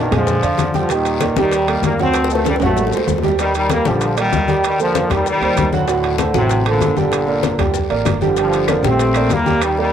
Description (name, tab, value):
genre	latin, salsa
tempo	193 BPM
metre	4/4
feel	straight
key	G minor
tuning	A4 = 437 Hz
part	bright trombone section	melody	0.0-9.9 s	A2 to C4	-18 LUFS	left 2 dB	none
part	warm grand piano	accompaniment	0.0-9.9 s	F#3 to Ab5	-19 LUFS	right 7 dB	cassette tape
part	upright bass	bass	0.0-9.9 s	G1 to Bb2	-23 LUFS	left 1 dB	none
part	congas	percussion	0.1-9.9 s	none	-23 LUFS	left 8 dB	none
part	guiro	percussion	0.1-9.9 s	none	-36 LUFS	left 12 dB	none
part	maracas	percussion	0.1-9.8 s	none	-34 LUFS	left 16 dB	none
part	timbales	percussion	0.1-9.8 s	none	-27 LUFS	right 9 dB	none
part	bongos	percussion	0.3-9.9 s	none	-27 LUFS	left 10 dB	none
part	claves	percussion	8.7-9.8 s	none	-31 LUFS	left 12 dB	none
room	moderate spring reverb, RT60 2.6 s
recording	home recording on cassette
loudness	-14 LUFS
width	side -9 dB against mid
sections	0.0-9.9 A section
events	drum fill 2.1-3.4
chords	0.0 Bb7; 0.9 Ebmaj7; 2.1 D7; 3.4 Ebmaj7; 4.6 Cm7/Eb; 5.9 D7; 7.1 Gm7